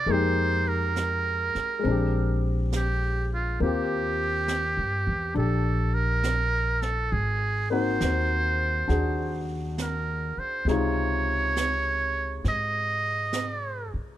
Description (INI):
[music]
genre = jazz ballad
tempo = 68 BPM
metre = 4/4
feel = swing 67% on 8ths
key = unclear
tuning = A4 = 441 Hz
[part]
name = trumpet with metal mute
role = melody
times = 0.0-13.9 s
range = F4 to Eb5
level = -28 LUFS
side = right 3 dB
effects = none
[part]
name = warm baby grand piano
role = accompaniment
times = 0.0-14.2 s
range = C3 to Ab4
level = -30 LUFS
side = left 3 dB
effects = none
[part]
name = upright bass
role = bass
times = 0.0-14.0 s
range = Ab1 to Ab2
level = -28 LUFS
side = equal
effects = none
[part]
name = jazz brush drum kit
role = drums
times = 0.1-14.2 s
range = brushed snare drum, hi-hat, snare drum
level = -37 LUFS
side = right 4 dB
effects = none
[sound]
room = little or no reverb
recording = dark, warm production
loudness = -24 LUFS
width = side -13 dB against mid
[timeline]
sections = 0.0-14.2 A section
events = none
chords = 0.1 Fm11; 1.8 Bb13; 3.6 Eb6; 7.1 Ab7; 10.7 Dbmaj9